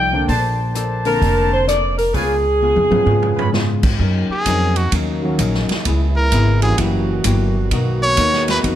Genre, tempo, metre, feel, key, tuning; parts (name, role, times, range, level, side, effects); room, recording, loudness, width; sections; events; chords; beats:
jazz, big band swing; 129 BPM; 4/4; swing 65% on 8ths; F# major from 4.0 s; A4 = 440 Hz
mellow saxophone section; melody; 0.0-3.8 s; Ab4 to G5; -18 LUFS; equal
archtop guitar, miked and amplified; accompaniment; 0.0-8.8 s; Db3 to D5; -25 LUFS; left 5 dB
upright bass; bass; 0.0-8.8 s; F1 to Ab2; -19 LUFS; equal
warm grand piano; accompaniment; 0.1-7.2 s; D3 to Bb4; -24 LUFS; right 2 dB
clear trumpet section; stabs; 0.3-3.5 s; D4 to Cb6; -24 LUFS; equal
swinging big-band drum kit; drums; 0.3-8.8 s; crash cymbal, hi-hat, kick drum, ride cymbal, rim click, snare drum, toms; -22 LUFS; right 1 dB
clear trombone section; sustained chords; 4.0-8.8 s; C#3 to F#4; -26 LUFS; equal
brilliant trumpet; melody; 4.3-8.6 s; F#4 to C#5; -19 LUFS; equal
light reverb; -14 LUFS; side -11 dB against mid
0.0-4.0 A section; 4.0-8.8 B section
drum fill 2.6-3.5; trumpet solo 4.0-8.8
0.3 Bbmaj9; 2.1 Db7; 4.0 F#6; 5.8 C#m7; 6.8 F#7b9; 7.7 Bmaj7
| 0.28 0.74 1.21 1.67 | 2.13 2.60 3.06 3.53 | 3.99 4.46 4.92 5.39 | 5.85 6.32 6.78 7.24 | 7.71 8.17 8.64